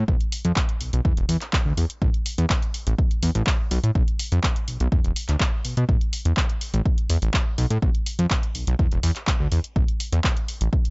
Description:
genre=filtered disco house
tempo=124 BPM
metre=4/4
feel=straight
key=unclear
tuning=A4 = 440 Hz
part: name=fat analog bass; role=bass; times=0.0-10.7 s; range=E1 to B2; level=-21 LUFS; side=equal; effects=tube saturation, sidechain pumping
part: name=electronic kick drum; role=drums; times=0.1-10.8 s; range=none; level=-22 LUFS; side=equal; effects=none
part: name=punchy analog drum machine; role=drums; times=0.2-10.9 s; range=handclaps, hi-hat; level=-28 LUFS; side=equal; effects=sidechain pumping on hats
room=little or no reverb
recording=dry, gritty hardware recording, nothing above 7.8 kHz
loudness=-20 LUFS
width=side -33 dB against mid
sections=0.0-10.9 A section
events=none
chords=none

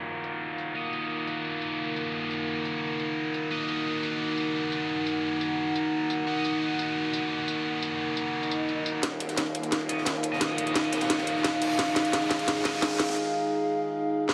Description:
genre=dark technical drum and bass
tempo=174 BPM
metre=4/4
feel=straight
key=Eb minor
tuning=A4 = 440 Hz
part: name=dark analog pad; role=sustained chords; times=0.0-14.3 s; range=Eb4 to Gb5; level=-32 LUFS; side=equal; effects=chorus
part: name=scooped high-gain guitar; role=stabs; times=0.0-12.8 s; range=Bb3 to Eb5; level=-34 LUFS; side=equal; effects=distortion, low-pass filter, dub echo
part: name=downlifter, swell and riser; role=sound effects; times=0.0-0.8, 8.4-13.2 s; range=none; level=-42 LUFS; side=equal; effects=none
part: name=drum and bass drum kit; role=drums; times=0.2-14.3 s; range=hi-hat, snare drum, tambourine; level=-32 LUFS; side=equal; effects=low-pass filter on hats, low-pass filter on snare, low-pass filter on perc, low-pass filter on room
part: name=snarling distorted saw bass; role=bass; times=9.0-13.2 s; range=Eb1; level=-40 LUFS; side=equal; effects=distortion, overdrive, high-pass filter
part: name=crunchy breakbeat drum kit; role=drums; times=9.0-13.2 s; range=hi-hat, ride cymbal, snare drum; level=-41 LUFS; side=equal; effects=none
room=wet lush hall reverb, RT60 2.1 s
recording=heavily compressed radio sound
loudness=-28 LUFS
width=mono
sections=0.0-9.0 A section; 9.0-14.3 B section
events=swell 8.4-9.0; build-up 9.0-14.3; drum fill 9.0-13.2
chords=0.0 Ebm

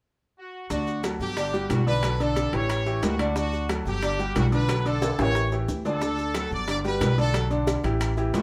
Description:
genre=latin, salsa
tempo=181 BPM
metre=4/4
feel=straight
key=D major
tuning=A4 = 440 Hz
part: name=brilliant trumpet section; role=melody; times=0.4-8.4 s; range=F#4 to D5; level=-33 LUFS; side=equal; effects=none
part: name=bright baby grand piano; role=accompaniment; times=0.7-8.4 s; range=D3 to D5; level=-30 LUFS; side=equal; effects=none
part: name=upright bass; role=bass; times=0.7-8.4 s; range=G1 to D2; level=-29 LUFS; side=equal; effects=none
part: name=bongos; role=percussion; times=0.7-8.4 s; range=none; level=-36 LUFS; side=equal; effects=none
part: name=maracas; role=percussion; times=0.7-8.4 s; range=none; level=-46 LUFS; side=equal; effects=none
part: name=timbales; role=percussion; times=1.0-8.4 s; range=none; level=-34 LUFS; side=equal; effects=none
room=moderate studio reverb, RT60 0.8 s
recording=none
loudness=-25 LUFS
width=mono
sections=0.7-8.4 A section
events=drum fill 5.0-6.0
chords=0.0 N.C.; 0.7 D; 1.4 Gmaj7; 2.0 Bm7; 2.7 A7; 3.4 D; 4.0 Gmaj7; 4.7 Bm7; 5.4 A5; 6.0 D; 6.7 Gmaj7; 7.3 Bm7

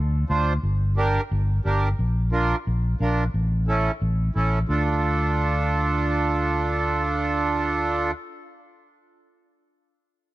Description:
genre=latin, cumbia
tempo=178 BPM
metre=4/4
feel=straight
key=D minor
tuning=A4 = 440 Hz
part: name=fingered electric bass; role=bass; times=0.0-8.1 s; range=G1 to D2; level=-23 LUFS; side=equal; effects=none
part: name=accordion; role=accompaniment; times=0.3-8.1 s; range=C#4 to C5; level=-24 LUFS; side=right 3 dB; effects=none
room=little or no reverb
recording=close, detailed microphones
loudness=-21 LUFS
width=side -16 dB against mid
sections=0.0-4.7 A section; 4.7-7.4 B section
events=none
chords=0.0 Dm; 0.6 Gm; 2.0 Bb; 3.3 A; 4.7 Dm

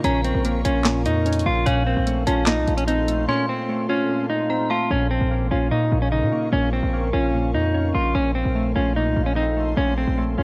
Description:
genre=hip hop, trap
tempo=148 BPM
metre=4/4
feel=half-time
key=Bb harmonic minor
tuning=A4 = 440 Hz
part: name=semi-hollow electric guitar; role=melody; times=0.0-10.4 s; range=C4 to F4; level=-25 LUFS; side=equal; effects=low-pass filter, delay
part: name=dark detuned synth bell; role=second line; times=0.0-4.9 s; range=F5 to C6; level=-33 LUFS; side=equal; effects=chorus, tremolo, delay
part: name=glassy digital keys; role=accompaniment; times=0.0-10.4 s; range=Bb2 to F4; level=-28 LUFS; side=equal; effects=chorus, low-pass filter
part: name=ethereal airy pad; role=sustained chords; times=0.0-10.4 s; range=A4 to Db6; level=-38 LUFS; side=equal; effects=ensemble chorus, built-in reverb, tremolo
part: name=hard-hitting 808-style bass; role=bass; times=0.0-10.4 s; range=A1 to Bb2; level=-26 LUFS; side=equal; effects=none
part: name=trap drum kit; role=drums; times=0.0-3.2 s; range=handclaps, hi-hat, snare drum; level=-27 LUFS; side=equal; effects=none
room=light reverb, digital ambience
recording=worn, warbling old tape, cassette tape, warbly pitch drift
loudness=-21 LUFS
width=mono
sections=0.0-4.9 A section; 4.9-10.4 B section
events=drums muted 3.3-4.9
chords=0.0 Bbm; 1.7 F/Bb; 4.9 Bbm; 8.1 F/Bb

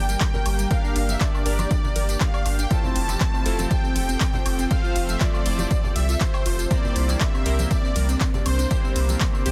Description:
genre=progressive house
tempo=120 BPM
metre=4/4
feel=straight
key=unclear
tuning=A4 = 440 Hz
part: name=soft supersaw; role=melody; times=0.0-8.9 s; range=C5 to A5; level=-33 LUFS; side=equal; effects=digital delay
part: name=lush unison pad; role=sustained chords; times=0.0-9.5 s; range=C3 to A4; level=-36 LUFS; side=equal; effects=chorus, sidechain pumping
part: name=unison pluck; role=arpeggios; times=0.0-9.5 s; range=G3 to G5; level=-34 LUFS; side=equal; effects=sidechain pumping, digital delay
part: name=saturated sub bass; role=bass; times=0.0-9.5 s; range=F1 to C2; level=-26 LUFS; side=equal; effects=sidechain pumping
part: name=big-room dance drum kit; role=drums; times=0.1-9.5 s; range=handclaps, hi-hat, ride cymbal, tambourine, woodblock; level=-33 LUFS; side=equal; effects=overdrive, sidechain pumping on hats, sidechain pumping on perc, sidechain pumping on cymbals
part: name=electronic kick drum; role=drums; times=0.2-9.3 s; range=none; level=-26 LUFS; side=equal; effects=overdrive
part: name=congas and woodblock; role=percussion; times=0.3-9.4 s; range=none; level=-37 LUFS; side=equal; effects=sidechain pumping on perc
part: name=chorused polysynth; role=stabs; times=0.7-9.5 s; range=A3 to C5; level=-35 LUFS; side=equal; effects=sidechain pumping, digital delay
room=little or no reverb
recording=dense, heavily limited modern master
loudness=-22 LUFS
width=mono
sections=0.0-9.5 A section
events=none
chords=0.0 Gm; 2.7 Fmaj7; 6.7 C7

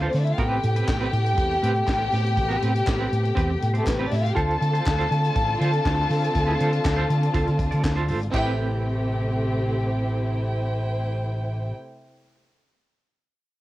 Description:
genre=disco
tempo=121 BPM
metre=4/4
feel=straight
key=A minor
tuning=A4 = 438 Hz
part: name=semi-hollow electric guitar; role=accompaniment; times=0.0-11.9 s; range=C4 to D5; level=-30 LUFS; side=right 4 dB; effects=tremolo, cassette tape, plate reverb
part: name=dark symphonic string section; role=sustained chords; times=0.0-11.7 s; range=C3 to G4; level=-30 LUFS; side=left 1 dB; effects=cassette tape
part: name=fingered electric bass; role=bass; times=0.0-11.7 s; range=G#1 to D3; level=-24 LUFS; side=equal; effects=none
part: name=warm studio violin section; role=second line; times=0.1-11.7 s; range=A3 to A5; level=-27 LUFS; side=left 1 dB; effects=cassette tape, plate reverb
part: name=tight funk drum kit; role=drums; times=0.1-8.5 s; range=crash cymbal, handclaps, hi-hat, kick drum, snare drum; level=-28 LUFS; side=equal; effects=cassette tape
part: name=group handclap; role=percussion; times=0.9-8.6 s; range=none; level=-40 LUFS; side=left 2 dB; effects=none
room=light reverb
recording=home recording on cassette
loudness=-21 LUFS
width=side -16 dB against mid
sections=0.0-8.3 A section; 8.3-12.3 B section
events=none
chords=0.4 Am9; 4.4 Dm7; 8.3 Am9

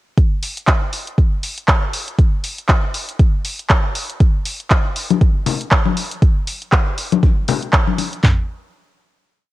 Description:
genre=house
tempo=119 BPM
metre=4/4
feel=swing 57% on 16ths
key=none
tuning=none
part: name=deep house drum kit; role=drums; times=0.2-8.4 s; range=handclaps, kick drum, toms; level=-14 LUFS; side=equal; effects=cassette tape
part: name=punchy analog drum machine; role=drums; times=0.2-8.2 s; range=handclaps, hi-hat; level=-20 LUFS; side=equal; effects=cassette tape
part: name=congas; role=percussion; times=5.1-8.1 s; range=none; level=-19 LUFS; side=left 9 dB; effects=sidechain pumping on perc
room=digital ambience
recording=home recording on cassette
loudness=-15 LUFS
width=side -16 dB against mid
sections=0.2-8.2 drop; 8.2-9.5 final hit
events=drop 0.2-8.2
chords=none

